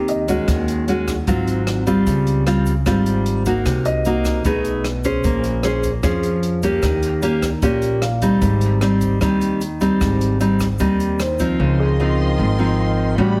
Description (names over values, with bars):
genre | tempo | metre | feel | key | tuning
bossa nova | 151 BPM | 4/4 | straight | Ab major | A4 = 440 Hz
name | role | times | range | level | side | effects
nylon-string guitar | accompaniment | 0.0-13.4 s | Ab2 to C5 | -21 LUFS | equal | none
warm baby grand piano | accompaniment | 0.0-0.6, 3.9-4.6, 8.0-8.6, 11.2-13.2 s | Ab4 to F5 | -29 LUFS | equal | none
upright bass | bass | 0.0-13.4 s | Ab1 to F2 | -24 LUFS | equal | none
open jazz drum kit | drums | 0.1-11.5 s | hi-hat, kick drum, rim click | -29 LUFS | equal | none
egg shaker | percussion | 0.3-11.6 s | none | -44 LUFS | equal | none
clear trombone | second line | 11.6-13.4 s | Eb3 to G3 | -29 LUFS | equal | none
warm studio violin section | sustained chords | 11.6-13.4 s | F4 to C6 | -32 LUFS | equal | none
room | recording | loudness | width
light reverb | heavily compressed radio sound, multiband compression | -19 LUFS | mono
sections
0.0-11.6 A section; 11.6-13.4 B section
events
none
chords
0.5 Ebm7; 1.3 Ab6; 2.1 Dbmaj7#11; 3.7 Cm7b5; 4.4 B13; 5.2 Bbm9; 6.8 Eb7; 8.4 Abmaj7; 11.6 Dbmaj9